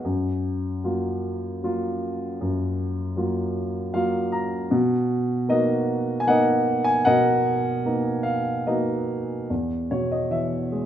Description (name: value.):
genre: classical, lyrical solo piano.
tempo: 76 BPM.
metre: 3/4.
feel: rubato.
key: unclear.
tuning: A4 = 440 Hz.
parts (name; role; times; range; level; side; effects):
warm grand piano; solo; 0.0-10.9 s; E2 to Bb5; -22 LUFS; equal; none.
room: moderate recital hall reverb, RT60 1.7 s.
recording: minimal, uncompressed stereo recording.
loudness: -22 LUFS.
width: side -10 dB against mid.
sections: 0.0-9.5 A section; 9.5-10.9 B section.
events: grand piano fill 3.6-4.7.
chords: 0.0 Gbmaj7; 4.7 Bmaj7; 9.5 E5.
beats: | 0.04 0.85 1.63 | 2.41 3.18 3.95 | 4.73 5.50 6.28 | 7.07 7.86 8.68 | 9.51 10.31.